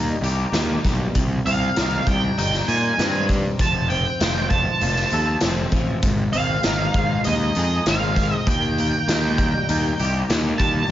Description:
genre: quiet-loud alternative rock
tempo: 98 BPM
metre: 4/4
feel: straight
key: unclear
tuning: A4 = 439 Hz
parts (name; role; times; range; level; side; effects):
- clean electric guitar; arpeggios; 0.0-10.9 s; Ab2 to A4; -27 LUFS; left 2 dB; ensemble chorus, slapback echo
- fuzz picked electric bass; bass; 0.0-10.8 s; F1 to Bb2; -23 LUFS; equal; overdrive
- raw garage drum kit; drums; 0.2-10.7 s; hi-hat, kick drum, snare drum; -23 LUFS; equal; none
- octave-fuzz lead guitar; melody; 1.5-10.9 s; Eb5 to A5; -23 LUFS; right 3 dB; distortion, slapback echo
room: light reverb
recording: nothing above 7.5 kHz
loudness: -18 LUFS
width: side -12 dB against mid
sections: 0.0-10.9 A section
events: none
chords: 0.0 Eb; 1.1 Cm; 3.6 F; 6.0 Ab; 8.5 Eb

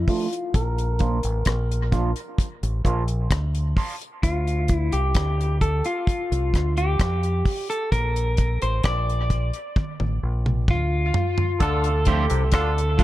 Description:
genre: dub reggae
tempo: 65 BPM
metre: 4/4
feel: straight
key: D minor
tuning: A4 = 441 Hz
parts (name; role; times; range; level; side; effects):
- electric guitar at the edge of break-up; melody; 0.0-13.0 s; F4 to D5; -27 LUFS; left 1 dB; spring reverb, low-pass filter, dub echo
- deep dub fingered electric bass; bass; 0.0-13.0 s; A1 to F2; -23 LUFS; equal; none
- electric guitar at the edge of break-up; accompaniment; 0.1-3.9, 12.1-13.0 s; F3 to F4; -29 LUFS; right 4 dB; high-pass filter, low-pass filter, dub echo
- deep reggae drum kit; drums; 0.1-13.0 s; hi-hat, kick drum, rim click, toms; -23 LUFS; equal; none
- mellow horn section; second line; 11.6-13.0 s; A3 to A4; -28 LUFS; right 3 dB; dub echo
- overdriven clav; riff; 11.6-12.8 s; C3 to D3; -30 LUFS; left 7 dB; dub echo
room: studio ambience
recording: dark, warm production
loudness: -20 LUFS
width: side -15 dB against mid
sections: 0.0-11.6 A section; 11.6-13.0 B section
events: filter sweep 0.0-11.6; drum fill 9.8-11.6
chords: 0.0 Dm; 0.5 Bb; 4.2 Dm; 7.9 Bb; 11.6 Dm

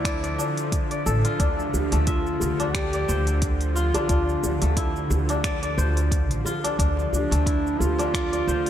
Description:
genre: organic downtempo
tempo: 89 BPM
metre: 4/4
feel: swing 56% on 16ths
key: D minor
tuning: A4 = 439 Hz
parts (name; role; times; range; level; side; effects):
- mellow duduk; melody; 0.0-8.7 s; D4 to G4; -29 LUFS; equal; digital delay
- bowed-like drone; sustained chords; 0.0-8.7 s; D3 to E5; -31 LUFS; right 1 dB; built-in reverb, sidechain pumping
- kora; arpeggios; 0.0-8.7 s; A3 to E5; -28 LUFS; left 2 dB; digital delay
- upright bass; bass; 0.0-8.7 s; A1 to D2; -25 LUFS; equal; tube saturation, sidechain pumping
- electronic kick drum; drums; 0.0-8.3 s; none; -26 LUFS; equal; none
- deep house drum kit; drums; 0.1-8.7 s; finger snaps, hi-hat, shaker; -32 LUFS; equal; none
- djembe; percussion; 1.6-8.7 s; none; -34 LUFS; right 2 dB; none
room: moderate lush hall reverb, RT60 2.5 s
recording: big arena sound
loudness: -21 LUFS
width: side -10 dB against mid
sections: 0.0-8.7 A section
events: none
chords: 0.0 Dmadd9

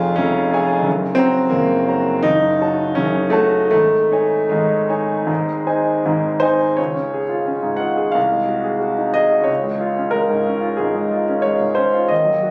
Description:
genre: classical, romantic character piece for solo piano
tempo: 74-94 BPM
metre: 4/4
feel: rubato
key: Db major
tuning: A4 = 438 Hz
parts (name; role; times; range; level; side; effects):
- warm concert grand piano; solo; 0.0-12.5 s; F1 to Bb5; -18 LUFS; equal; none
room: light reverb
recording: recorded on a phone in the room, club reverb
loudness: -18 LUFS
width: mono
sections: 0.0-6.8 A section; 6.8-12.5 B section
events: none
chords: 0.0 Db/F; 0.9 Gb; 2.3 Gbm; 3.7 Absus4; 5.3 Ab; 6.8 Db; 8.2 Ab7/C; 9.5 Db

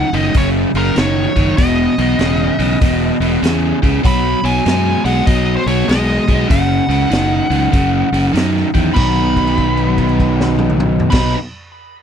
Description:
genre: blues rock power trio and southern rock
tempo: 98 BPM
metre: 4/4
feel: swing 65% on 8ths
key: B major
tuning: A4 = 439 Hz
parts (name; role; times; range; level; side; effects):
- nasal lead guitar with a parked wah; melody; 0.0-11.3 s; A#4 to B5; -21 LUFS; equal; overdrive
- biting overdriven guitar; riff; 0.0-11.4 s; E2 to D#4; -16 LUFS; equal; none
- fuzz fingered electric bass; bass; 0.1-11.3 s; E1 to F#2; -18 LUFS; equal; overdrive
- raw garage drum kit; drums; 0.1-11.3 s; crash cymbal, hi-hat, kick drum, snare drum, toms; -17 LUFS; equal; none
room: little or no reverb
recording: dry, close 1970s-style studio recording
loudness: -12 LUFS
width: side -8 dB against mid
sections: 0.0-9.0 A section; 9.0-11.4 B section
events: held note 9.0-11.1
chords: 0.0 F#5; 1.6 E5; 4.0 B; 6.5 F#5; 9.0 B

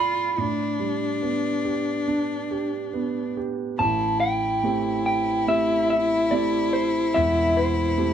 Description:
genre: acoustic folk-pop ballad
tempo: 71 BPM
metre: 4/4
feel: straight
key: A minor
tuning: A4 = 440 Hz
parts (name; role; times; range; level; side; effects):
- electric guitar through a small old amp; melody; 0.0-8.1 s; C5 to B5; -24 LUFS; equal; tremolo
- clear cello; second line; 0.0-8.1 s; D4 to F4; -25 LUFS; left 4 dB; none
- warm grand piano; accompaniment; 0.0-8.1 s; E1 to D5; -27 LUFS; right 5 dB; none
room: light reverb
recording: close, detailed microphones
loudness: -21 LUFS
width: side -9 dB against mid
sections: 0.0-3.8 A section; 3.8-8.1 B section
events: none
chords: 0.4 G/A; 3.8 Am7

